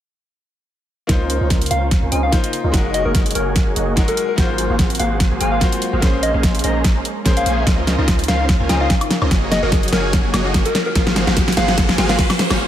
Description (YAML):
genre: future bass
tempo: 146 BPM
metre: 4/4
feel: swing 55% on 16ths, half-time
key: Db major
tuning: A4 = 440 Hz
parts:
  - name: bright baby grand piano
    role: accompaniment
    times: 1.1-7.7 s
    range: Ab3 to C5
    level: -25 LUFS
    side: left 3 dB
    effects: sidechain pumping, dub echo
  - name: airy breathy pad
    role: sustained chords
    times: 1.1-12.7 s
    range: Db3 to Bb4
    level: -30 LUFS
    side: right 1 dB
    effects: none
  - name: supersaw chords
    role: riff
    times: 1.1-12.6 s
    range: Bb3 to Bb5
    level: -23 LUFS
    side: right 1 dB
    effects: sidechain pumping, low-pass filter
  - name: long sustained 808-style bass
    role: bass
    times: 1.1-12.6 s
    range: Gb1 to Db2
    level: -22 LUFS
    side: equal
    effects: sidechain pumping
  - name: dubstep drum kit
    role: drums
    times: 1.1-12.6 s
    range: hi-hat, snare drum, woodblock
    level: -20 LUFS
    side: equal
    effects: none
  - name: electronic kick drum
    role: drums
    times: 1.1-12.3 s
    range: none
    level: -18 LUFS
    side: equal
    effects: none
  - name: soft struck synth lead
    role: melody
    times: 1.7-12.2 s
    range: Bb4 to Ab5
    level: -23 LUFS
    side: left 2 dB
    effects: chorus, sidechain pumping, digital delay
  - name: thumb-piano-like synth pluck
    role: arpeggios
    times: 7.7-12.5 s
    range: Bb3 to Db5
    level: -30 LUFS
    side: left 4 dB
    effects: none
  - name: riser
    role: sound effects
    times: 10.2-12.6 s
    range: none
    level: -28 LUFS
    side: equal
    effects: none
room: light reverb, digital ambience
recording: none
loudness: -14 LUFS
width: side -11 dB against mid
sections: 1.1-12.7 A section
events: build-up 1.1-12.7; drum fill 1.1-12.6; filter sweep on supersaw synth 1.1-12.7; riser 10.2-12.6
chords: 1.1 Dbmaj13; 2.7 Gb69; 4.4 Ab13; 6.0 Bbm9; 7.7 Dbmaj13; 9.3 Gb69; 11.0 Ab13